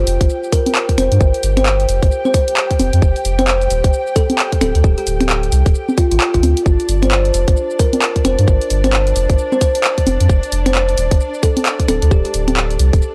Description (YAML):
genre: UK garage, two-step garage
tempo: 132 BPM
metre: 4/4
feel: swing 61% on 16ths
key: unclear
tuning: A4 = 440 Hz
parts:
  - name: dark studio violin section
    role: sustained chords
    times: 0.0-13.1 s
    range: D4 to G5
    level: -30 LUFS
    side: equal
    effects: sidechain pumping
  - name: soft dub sub bass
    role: bass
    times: 0.0-13.0 s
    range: D1 to G2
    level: -18 LUFS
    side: equal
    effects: sidechain pumping
  - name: punchy analog drum machine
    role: drums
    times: 0.1-13.1 s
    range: congas, finger snaps, handclaps, hi-hat, shaker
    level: -21 LUFS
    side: equal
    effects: none
  - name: electronic kick drum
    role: drums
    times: 0.2-13.0 s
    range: none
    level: -17 LUFS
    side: equal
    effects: none
  - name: kalimba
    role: melody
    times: 0.5-12.3 s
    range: F4 to C5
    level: -21 LUFS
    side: equal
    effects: none
room: little or no reverb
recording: dry, gritty hardware recording, cassette tape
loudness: -15 LUFS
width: mono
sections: 0.0-13.1 A section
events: none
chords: 0.0 N.C.; 2.8 Ebadd9 (rootless); 4.6 D5; 6.7 G5; 10.1 F5; 11.9 N.C.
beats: 0.29 0.75 | 1.20 1.66 2.11 2.57 | 3.02 3.48 3.93 4.39 | 4.84 5.29 5.75 6.20 | 6.66 7.11 7.57 8.02 | 8.48 8.93 9.39 9.84 | 10.29 10.75 11.20 11.66 | 12.11 12.57 13.02